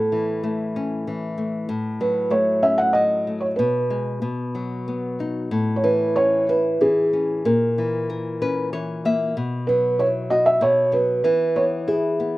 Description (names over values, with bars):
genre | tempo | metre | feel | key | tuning
children's music, lullaby | 95 BPM | 3/4 | rubato | unclear | A4 = 438 Hz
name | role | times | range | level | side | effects
felt-muted upright piano | melody | 0.0-12.4 s | G#4 to F#5 | -19 LUFS | right 1 dB | slapback echo
flamenco guitar | accompaniment | 0.0-12.4 s | A2 to E5 | -24 LUFS | left 2 dB | none
room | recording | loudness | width
light reverb | recorded outdoors, with no room sound | -19 LUFS | side -18 dB against mid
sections
0.0-12.4 A section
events
nylon-string guitar fill 8.1-9.4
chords
0.0 A; 1.7 F#m/A; 3.6 G#m/B; 4.2 B; 5.5 A; 7.5 A#dim; 9.4 Bsus4; 10.6 B5; 11.2 E5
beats
0.44 1.07 | 1.69 2.31 2.94 | 3.57 4.21 4.86 | 5.51 6.16 6.81 | 7.46 8.10 8.74 | 9.37 9.99 10.62 | 11.24 11.88